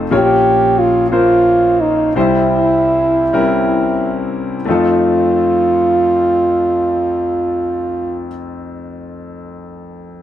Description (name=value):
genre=gospel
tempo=41-62 BPM (dotted quarters)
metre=6/8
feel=straight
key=unclear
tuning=A4 = 440 Hz
part: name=warm concert grand piano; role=accompaniment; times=0.0-10.2 s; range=F1 to Db5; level=-18 LUFS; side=left 3 dB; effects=none
part: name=French horn with straight mute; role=melody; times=0.1-8.3 s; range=Eb4 to G4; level=-13 LUFS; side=right 2 dB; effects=none
room=moderate echo chamber reverb, RT60 1.8 s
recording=none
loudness=-12 LUFS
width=side -11 dB against mid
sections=0.0-4.7 A section; 4.7-10.2 B section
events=slowing down 0.1-4.7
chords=0.1 Bbm; 2.2 C; 4.7 F7